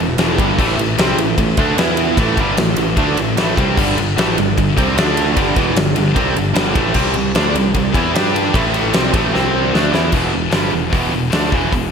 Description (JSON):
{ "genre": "hard rock", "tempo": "151 BPM", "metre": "4/4", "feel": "straight", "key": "E minor", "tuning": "A4 = 440 Hz", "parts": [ { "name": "overdriven tonewheel organ", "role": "sustained chords", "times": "0.0-10.1 s", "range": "E3 to E5", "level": "-30 LUFS", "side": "equal", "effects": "none" }, { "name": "crunchy overdriven guitar", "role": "riff", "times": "0.0-10.1 s", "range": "E2 to G4", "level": "-23 LUFS", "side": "equal", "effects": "ensemble chorus" }, { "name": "distorted electric guitar", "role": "riff", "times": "0.0-11.9 s", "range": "E2 to G4", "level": "-20 LUFS", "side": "right 10 dB", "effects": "overdrive" }, { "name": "heavy high-gain guitar", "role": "riff", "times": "0.0-11.9 s", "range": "E2 to G4", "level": "-20 LUFS", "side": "left 11 dB", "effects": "distortion" }, { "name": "modern bright picked electric bass", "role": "bass", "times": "0.0-11.9 s", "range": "E1 to G2", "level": "-21 LUFS", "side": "equal", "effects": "none" }, { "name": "huge arena drum kit", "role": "drums", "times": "0.2-11.8 s", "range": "crash cymbal, hi-hat, kick drum, ride cymbal, snare drum", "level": "-18 LUFS", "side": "equal", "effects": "gated reverb" } ], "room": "light reverb, small room reverb", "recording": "bright 1980s-style digital production", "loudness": "-13 LUFS", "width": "side -6 dB against mid", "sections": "0.0-10.1 A section; 10.1-11.9 B section", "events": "drum fill 9.3-10.1", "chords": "0.0 Em; 0.6 A5; 1.8 E5; 2.2 A5; 3.8 G5; 5.0 D5; 5.4 G5; 7.0 C5; 8.1 G5; 8.5 A5; 8.9 C5; 10.1 Em" }